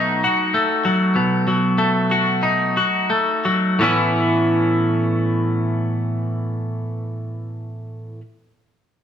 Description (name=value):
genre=rock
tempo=83-101 BPM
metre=4/4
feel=straight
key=A lydian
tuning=A4 = 444 Hz
part: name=twelve-string electric guitar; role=arpeggios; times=0.0-8.2 s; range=A2 to F#4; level=-17 LUFS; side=equal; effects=none
room=wet large studio reverb, RT60 0.9 s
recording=band playing live in one room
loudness=-17 LUFS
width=side -9 dB against mid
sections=0.0-3.8 A section; 3.8-6.7 B section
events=slowing down 0.0-3.8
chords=0.0 B7; 3.8 Aadd9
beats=0.53 | 1.14 1.77 2.42 3.10 | 3.81 4.53 5.26 5.98